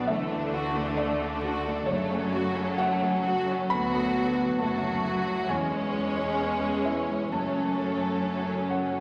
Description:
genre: cinematic, emotional film score for orchestra.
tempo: 66 BPM.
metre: 4/4.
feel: rubato.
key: F# minor.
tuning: A4 = 442 Hz.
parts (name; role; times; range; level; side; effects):
rich studio violin section; melody; 0.0-9.0 s; A4 to C#5; -43 LUFS; equal; none.
clear studio violin section; second line; 0.0-9.0 s; A3 to F#4; -33 LUFS; equal; none.
clear studio viola section; accompaniment; 0.0-9.0 s; F#3 to A3; -39 LUFS; equal; none.
felt-muted upright piano; accompaniment; 0.0-9.0 s; D2 to B5; -33 LUFS; equal; none.
dark French horn section; sustained chords; 0.0-9.0 s; C#3 to B3; -36 LUFS; equal; none.
rich studio cello section; bass; 0.0-9.0 s; D2 to D3; -36 LUFS; equal; none.
rich studio double bass section; bass; 0.0-9.0 s; E1 to D2; -43 LUFS; equal; none.
room: wet concert hall reverb, RT60 1.9 s.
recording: vinyl crackle.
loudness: -28 LUFS.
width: mono.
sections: 0.0-9.0 A section.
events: none.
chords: 0.1 D; 1.9 F#m; 3.7 D; 5.5 C#m/E; 7.3 F#m.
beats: | 0.07 0.97 1.88 2.79 | 3.71 4.60 5.49 6.38 | 7.31 8.23.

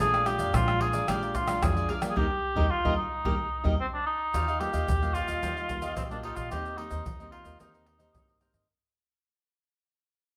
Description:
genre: samba and choro.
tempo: 110 BPM.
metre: 4/4.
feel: straight.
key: Eb major.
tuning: A4 = 440 Hz.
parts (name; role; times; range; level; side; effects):
dark cor anglais; melody; 0.0-8.4 s; C4 to Ab4; -32 LUFS; equal; slapback echo.
cavaquinho; accompaniment; 0.0-8.7 s; Eb4 to F5; -39 LUFS; equal; none.
nylon-string guitar; accompaniment; 0.0-8.7 s; Bb2 to G4; -39 LUFS; equal; none.
upright bass; bass; 0.0-8.7 s; Bb1 to Bb2; -34 LUFS; equal; none.
tube shaker, surdo, pandeiro and tamborim; percussion; 0.0-8.7 s; none; -36 LUFS; equal; none.
room: moderate large studio reverb, RT60 0.8 s.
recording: band playing live in one room.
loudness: -29 LUFS.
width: mono.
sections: 0.0-4.3 A section; 4.3-8.7 B section.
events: band accent 2.2-4.3; drum fill 3.9-4.3; fade-out 4.3-8.7.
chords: 0.0 Bb7; 2.2 Eb; 4.3 Ebadd9; 6.5 Cm7/Eb.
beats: | 0.00 0.54 1.08 1.63 | 2.17 2.71 3.25 3.80 | 4.34 4.88 5.43 5.97 | 6.51 7.06 7.60 8.14.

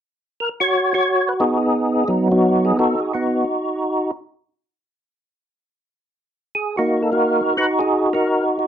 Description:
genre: jazz.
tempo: 175 BPM.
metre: 4/4.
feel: swing 64% on 8ths.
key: unclear.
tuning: A4 = 441 Hz.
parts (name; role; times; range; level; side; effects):
percussive tonewheel organ; solo; 0.4-4.1, 6.6-8.7 s; Gb3 to Db5; -16 LUFS; equal; slow rotary speaker, chorus vibrato.
room: moderate club reverb, RT60 0.6 s.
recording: dark, warm production.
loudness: -17 LUFS.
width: side -9 dB against mid.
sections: 0.0-8.7 A section.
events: none.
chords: 0.0 Gb/Bb; 0.7 Abm7; 3.5 N.C.; 6.2 Ab7sus2/Bb.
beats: 0.03 0.37 | 0.71 1.05 1.40 1.74 | 2.08 2.42 2.77 3.11 | 3.45 3.79 4.13 4.48 | 4.82 5.16 5.50 5.84 | 6.19 6.53 6.87 7.21 | 7.55 7.90 8.24 8.58.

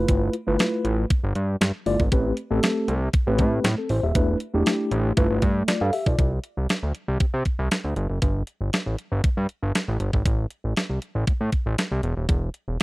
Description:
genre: early-eighties boogie funk.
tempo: 118 BPM.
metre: 4/4.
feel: straight.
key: C major.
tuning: A4 = 440 Hz.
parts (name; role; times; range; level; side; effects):
mellow tine electric piano; accompaniment; 0.0-6.3 s; A3 to F5; -24 LUFS; left 1 dB; medium stereo tremolo.
fat analog bass; bass; 0.0-12.8 s; Eb1 to C3; -24 LUFS; equal; none.
crisp 8-bit digital drum machine; drums; 0.1-12.8 s; hi-hat, kick drum, snare drum; -23 LUFS; equal; none.
room: little or no reverb.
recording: dry, close 1970s-style studio recording.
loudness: -21 LUFS.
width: side -20 dB against mid.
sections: 0.0-6.2 A section; 6.2-12.8 B section.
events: none.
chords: 0.0 G13; 2.1 Am9; 4.2 E7sus4; 5.2 G13; 6.2 Csus2; 8.0 Gsus2; 10.3 Am; 12.3 E5.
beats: | 0.08 0.59 1.10 1.61 | 2.12 2.63 3.13 3.64 | 4.15 4.66 5.17 5.68 | 6.19 6.70 7.20 7.71 | 8.22 8.73 9.24 9.74 | 10.25 10.76 11.27 11.78 | 12.29 12.80.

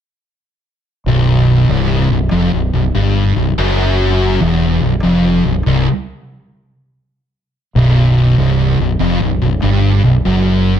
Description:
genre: metal.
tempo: 72 BPM.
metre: 4/4.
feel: straight.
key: unclear.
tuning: A4 = 440 Hz.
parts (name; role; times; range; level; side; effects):
thick fuzz guitar; riff; 1.1-10.8 s; B1 to G2; -14 LUFS; left 6 dB; distortion.
thick fuzz guitar; riff; 1.1-10.8 s; B1 to G2; -16 LUFS; right 8 dB; distortion.
growling fingered electric bass; bass; 1.1-10.8 s; B0 to G1; -17 LUFS; equal; overdrive.
room: light reverb.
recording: dark, warm production.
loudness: -11 LUFS.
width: side -9 dB against mid.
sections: 0.6-10.8 A section.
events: none.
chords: 0.6 B5.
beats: | 0.65 1.48 2.32 3.16 | 3.99 4.83 5.66 6.50 | 7.34 8.17 9.01 9.84 | 10.68.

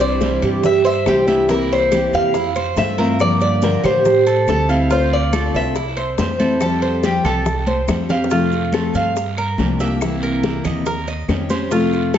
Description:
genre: latin, Cuban son and guajira.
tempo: 141 BPM.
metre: 4/4.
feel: straight.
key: F major.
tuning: A4 = 439 Hz.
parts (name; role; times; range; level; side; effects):
Cuban tres; melody; 0.0-7.9 s; G4 to F5; -19 LUFS; left 2 dB; tape echo.
picked steel-string acoustic guitar; accompaniment; 0.0-12.2 s; C3 to G4; -21 LUFS; left 2 dB; none.
Cuban tres; arpeggios; 0.0-12.2 s; E4 to F5; -21 LUFS; right 5 dB; none.
upright bass; bass; 0.0-12.2 s; C2 to A2; -23 LUFS; right 1 dB; none.
bongos; percussion; 0.0-12.2 s; none; -27 LUFS; left 5 dB; none.
congas; percussion; 0.0-12.2 s; none; -26 LUFS; left 1 dB; none.
maracas; percussion; 0.0-12.2 s; none; -42 LUFS; right 9 dB; none.
guiro; percussion; 0.2-12.2 s; none; -35 LUFS; right 5 dB; none.
claves; percussion; 0.4-12.2 s; none; -37 LUFS; left 4 dB; none.
room: moderate large studio reverb, RT60 1.2 s.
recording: nothing above 7.7 kHz.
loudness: -15 LUFS.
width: side -9 dB against mid.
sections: 0.0-8.3 A section; 8.3-12.2 B section.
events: drum fill 1.3, 7.7-8.3.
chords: 0.0 Cadd9; 1.5 C7; 2.3 Fmaj7; 3.2 Gm7; 4.1 Am7; 4.9 Dm7; 5.8 C; 6.6 Fadd9; 8.3 F; 9.2 Gm7; 10.0 C7; 10.9 Eb7.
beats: 0.21 0.64 1.07 | 1.49 1.92 2.35 2.77 | 3.20 3.62 4.05 4.48 | 4.90 5.33 5.75 6.18 | 6.61 7.03 7.46 7.88 | 8.31 8.73 9.16 9.59 | 10.01 10.44 10.86 11.29 | 11.71 12.14.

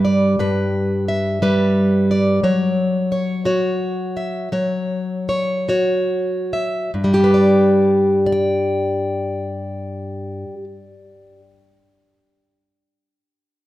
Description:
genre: folk, solo fingerstyle acoustic guitar.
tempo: 45-60 BPM (dotted quarters).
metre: 6/8.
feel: rubato.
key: G major.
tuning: A4 = 440 Hz.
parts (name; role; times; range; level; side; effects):
fingerpicked plugged-in steel-string acoustic guitar; solo; 0.0-11.4 s; G2 to G5; -16 LUFS; equal; none.
room: moderate concert hall reverb, RT60 2.3 s.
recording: minimal, uncompressed stereo recording.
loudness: -16 LUFS.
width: side -15 dB against mid.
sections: 0.0-6.9 A section; 6.9-12.2 B section.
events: slowing down 2.4-6.9.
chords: 0.0 G; 2.4 F#5; 6.9 G.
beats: | 0.38 1.41 | 2.42 3.45 | 4.52 5.68 | 6.95 8.27 | 9.57 10.87.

